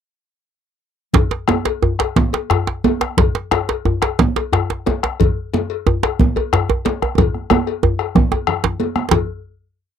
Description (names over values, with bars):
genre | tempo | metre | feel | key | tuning
west african traditional, West African drum ensemble | 121 BPM (dotted quarters) | 12/8 | straight | none | none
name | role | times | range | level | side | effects
bombo | percussion | 1.1-9.3 s | none | -19 LUFS | left 2 dB | none
congas | percussion | 1.1-9.3 s | none | -19 LUFS | right 7 dB | none
cowbell | percussion | 1.1-9.3 s | none | -24 LUFS | left 18 dB | none
djembe | percussion | 1.1-9.3 s | none | -22 LUFS | left 3 dB | none
djembe | percussion | 1.1-9.3 s | none | -20 LUFS | right 4 dB | none
room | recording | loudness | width
light reverb | dry, close 1970s-style studio recording | -15 LUFS | side -8 dB against mid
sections
1.1-9.1 A section; 9.1-10.0 final hit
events
speeding up 1.1-10.0; drum fill 7.2-9.1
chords
none